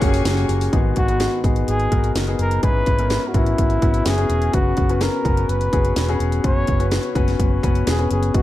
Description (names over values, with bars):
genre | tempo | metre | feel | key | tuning
piano-driven pop | 126 BPM | 4/4 | straight | unclear | A4 = 440 Hz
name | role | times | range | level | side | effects
clear concert grand piano | accompaniment | 0.0-8.4 s | G#2 to B4 | -23 LUFS | left 4 dB | none
rich studio string section | sustained chords | 0.0-0.7 s | A#4 to C#6 | -34 LUFS | left 2 dB | none
fingerpicked plugged-in steel-string acoustic guitar | riff | 0.0-0.7 s | F#3 to A#4 | -28 LUFS | right 9 dB | none
vintage muted fingered electric bass | bass | 0.0-8.4 s | E1 to G#1 | -21 LUFS | equal | none
house drum kit | drums | 0.0-8.4 s | hi-hat, kick drum, snare drum | -21 LUFS | equal | none
breathy trumpet | melody | 1.0-8.4 s | E4 to C#5 | -24 LUFS | equal | ping-pong delay
room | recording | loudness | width
light reverb, studio reverb | dark, warm production | -16 LUFS | side -14 dB against mid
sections
0.7-8.4 A section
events
none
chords
0.0 F#add9; 0.7 G#m7; 2.6 E6/G#; 4.5 F#sus4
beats
0.25 | 0.73 1.20 1.68 2.16 | 2.63 3.11 3.58 4.06 | 4.54 5.01 5.49 5.96 | 6.44 6.92 7.39 7.87 | 8.34